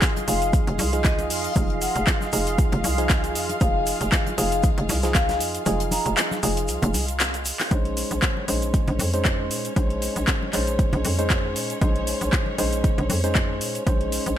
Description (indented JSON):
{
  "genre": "deep house",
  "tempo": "117 BPM",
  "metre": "4/4",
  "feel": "swing 55% on 16ths",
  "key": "Bb minor",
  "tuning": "A4 = 440 Hz",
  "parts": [
    { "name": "warm analog pad", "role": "sustained chords", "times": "0.0-7.7 s", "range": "Ab4 to C6", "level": "-32 LUFS", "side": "equal", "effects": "chorus, sidechain pumping" },
    { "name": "percussive organ stab", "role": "stabs", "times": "0.0-14.4 s", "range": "F3 to C5", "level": "-28 LUFS", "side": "right 1 dB", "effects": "chorus, sidechain pumping, dub echo" },
    { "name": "deep house drum kit", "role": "drums", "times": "0.0-14.4 s", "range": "cabasa, handclaps, hi-hat", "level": "-26 LUFS", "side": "equal", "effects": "overdrive" },
    { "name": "deep reggae drum kit", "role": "drums", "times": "0.0-7.7 s", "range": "hi-hat, shaker, snare drum", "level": "-37 LUFS", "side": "left 3 dB", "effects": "none" },
    { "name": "electronic kick drum", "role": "drums", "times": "0.0-14.0 s", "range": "none", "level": "-22 LUFS", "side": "equal", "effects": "overdrive" },
    { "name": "warm symphonic violin section", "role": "texture", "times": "0.0-14.4 s", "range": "Db4 to F5", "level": "-36 LUFS", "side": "equal", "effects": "none" },
    { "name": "congas", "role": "percussion", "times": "0.2-14.0 s", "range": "none", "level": "-30 LUFS", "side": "left 2 dB", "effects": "none" },
    { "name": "vibraphone with medium mallets", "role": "melody", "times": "0.3-6.1 s", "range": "Eb5 to Bb5", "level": "-29 LUFS", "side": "left 3 dB", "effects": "tape echo" },
    { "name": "hollow knocking FM bass", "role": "bass", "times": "0.3-14.3 s", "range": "F1 to Bb2", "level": "-27 LUFS", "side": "equal", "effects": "tube saturation, sidechain pumping" }
  ],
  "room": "little or no reverb",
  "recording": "none",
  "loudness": "-20 LUFS",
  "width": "side -11 dB against mid",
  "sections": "0.0-7.7 A section; 7.7-14.4 B section",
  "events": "drop 0.0-7.7; kick drops out 5.7-7.7; drum fill 7.2-7.7",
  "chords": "0.0 Fm7; 7.7 Bbm11"
}